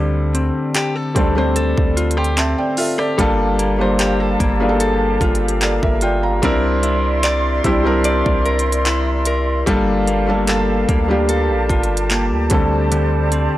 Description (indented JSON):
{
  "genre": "contemporary R&B",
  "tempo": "74 BPM",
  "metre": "4/4",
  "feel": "straight",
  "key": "G dorian",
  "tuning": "A4 = 444 Hz",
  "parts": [
    { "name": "felt-muted upright piano", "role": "accompaniment", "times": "0.0-13.6 s", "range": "G3 to C6", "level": "-19 LUFS", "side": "equal", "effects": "none" },
    { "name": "direct-recorded clean electric guitar", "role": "arpeggios", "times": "0.0-13.6 s", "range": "D3 to D5", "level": "-21 LUFS", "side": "left 2 dB", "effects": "none" },
    { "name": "long sustained 808-style bass", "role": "bass", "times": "0.0-13.5 s", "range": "G1 to D2", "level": "-20 LUFS", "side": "equal", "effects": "none" },
    { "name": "trap drum kit", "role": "drums", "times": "0.3-13.5 s", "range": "handclaps, hi-hat, kick drum, rim click", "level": "-21 LUFS", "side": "equal", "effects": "none" },
    { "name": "large flute ensemble", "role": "sustained chords", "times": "3.2-13.6 s", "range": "G4 to C6", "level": "-24 LUFS", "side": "right 3 dB", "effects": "none" }
  ],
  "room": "digital ambience",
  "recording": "dry, gritty hardware recording, transformer saturation",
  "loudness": "-15 LUFS",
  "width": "side -14 dB against mid",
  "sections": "0.0-13.6 A section",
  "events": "none",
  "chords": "0.0 D7sus4; 3.2 Gm9; 6.4 C9; 9.7 Gm9; 12.5 D7sus4"
}